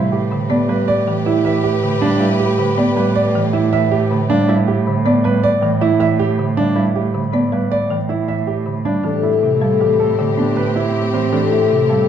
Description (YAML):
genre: classical, minimalist pattern music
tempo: 158 BPM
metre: 6/4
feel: straight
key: unclear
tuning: A4 = 438 Hz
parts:
  - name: concert harp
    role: melody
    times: 0.0-12.1 s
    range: G4 to B5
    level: -23 LUFS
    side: left 10 dB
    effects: none
  - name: warm clarinet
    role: second line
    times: 0.0-4.3, 9.0-12.1 s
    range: G4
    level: -24 LUFS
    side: right 3 dB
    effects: none
  - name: folk marimba with medium mallets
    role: accompaniment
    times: 0.0-12.1 s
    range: C3 to E4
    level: -19 LUFS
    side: right 1 dB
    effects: none
  - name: rich symphonic string section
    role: sustained chords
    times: 0.0-4.3, 9.0-12.1 s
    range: C4 to B4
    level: -26 LUFS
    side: left 3 dB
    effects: none
  - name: warm concert grand piano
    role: arpeggios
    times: 0.0-12.1 s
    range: C4 to E5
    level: -20 LUFS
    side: right 3 dB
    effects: none
  - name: warm cello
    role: bass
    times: 0.0-12.1 s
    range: A2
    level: -20 LUFS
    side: right 3 dB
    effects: none
room: moderate large studio reverb, RT60 1.4 s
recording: dark, warm production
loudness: -14 LUFS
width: side -9 dB against mid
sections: 0.0-12.1 A section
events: none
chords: 0.0 G/A; 9.0 Am9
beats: 0.31 0.69 1.07 1.45 1.82 | 2.21 2.58 2.96 3.34 3.72 4.10 | 4.48 4.86 5.24 5.62 6.00 6.38 | 6.76 7.14 7.52 7.90 8.28 8.66 | 9.04 9.42 9.80 10.18 10.56 10.94 | 11.32 11.70 12.08